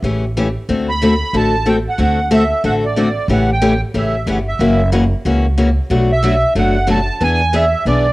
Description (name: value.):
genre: acoustic string swing (jazz manouche).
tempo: 184 BPM.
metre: 4/4.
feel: swing 59% on 8ths.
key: A mixolydian.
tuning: A4 = 440 Hz.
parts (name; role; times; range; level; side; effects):
picked steel-string acoustic guitar; accompaniment; 0.0-8.1 s; B2 to A4; -16 LUFS; left 2 dB; cassette tape.
upright bass; bass; 0.0-8.1 s; F#1 to E2; -18 LUFS; equal; none.
accordion; melody; 0.9-8.1 s; D5 to B5; -18 LUFS; right 2 dB; light tremolo tuning, cassette tape.
room: light reverb, studio ambience.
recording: home recording on cassette.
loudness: -13 LUFS.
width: side -19 dB against mid.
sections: 0.0-8.1 A section.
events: none.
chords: 0.0 A7; 0.7 D7; 3.3 A7; 4.6 F#7; 5.9 Bm7; 7.2 E7.